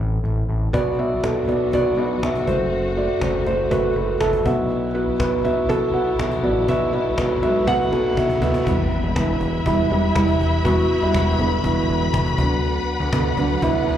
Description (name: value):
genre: piano-driven pop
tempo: 121 BPM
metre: 4/4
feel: straight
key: E minor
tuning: A4 = 437 Hz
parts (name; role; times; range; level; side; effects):
- felt-muted upright piano; accompaniment; 0.0-14.0 s; B2 to A5; -20 LUFS; right 1 dB; plate reverb, slapback echo
- fat analog bass; bass; 0.0-14.0 s; E1 to D2; -24 LUFS; left 1 dB; none
- warm studio string section; sustained chords; 0.7-14.0 s; F#3 to B5; -29 LUFS; left 4 dB; none
- cajon; drums; 0.7-13.9 s; none; -27 LUFS; equal; slapback echo
- riser and impact; sound effects; 6.9-10.7 s; none; -32 LUFS; left 2 dB; slapback echo
room: light reverb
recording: live gig heard through the venue's PA, club reverb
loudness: -18 LUFS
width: side -10 dB against mid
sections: 0.7-8.7 A section; 8.7-14.0 B section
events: felt piano fill 4.0-4.7; riser 6.9-8.7; drum fill 7.7-8.7; impact 8.7-10.7; felt piano solo 8.7-14.0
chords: 0.0 Am; 0.7 Bm; 2.5 F#dim; 4.5 Bsus4; 8.7 Em; 12.4 Bm/D